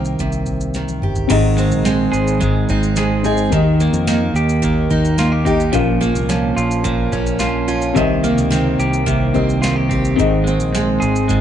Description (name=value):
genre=acoustic pop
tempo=108 BPM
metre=4/4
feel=straight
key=unclear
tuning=A4 = 441 Hz
part: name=felt-muted upright piano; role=accompaniment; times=0.0-11.4 s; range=Bb3 to F5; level=-23 LUFS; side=left 8 dB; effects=none
part: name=picked steel-string acoustic guitar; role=accompaniment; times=0.0-11.4 s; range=Ab2 to Ab4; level=-18 LUFS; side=right 3 dB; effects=none
part: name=fingered electric bass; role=bass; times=0.0-11.4 s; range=G1 to F2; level=-21 LUFS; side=left 1 dB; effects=none
part: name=booming analog drum machine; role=drums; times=0.0-11.4 s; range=crash cymbal, kick drum, shaker, snare drum, toms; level=-25 LUFS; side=left 1 dB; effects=none
part: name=electric guitar at the edge of break-up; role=arpeggios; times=1.3-11.4 s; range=Eb3 to Ab4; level=-20 LUFS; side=right 2 dB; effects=none
room=light reverb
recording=nothing above 10.7 kHz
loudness=-14 LUFS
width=side -10 dB against mid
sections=0.0-1.3 A section; 1.3-11.4 B section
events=drum fill 0.7-1.3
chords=0.0 Cm7; 1.3 Ab; 3.5 Eb; 5.7 Bbm; 8.0 Cm7; 10.2 Ab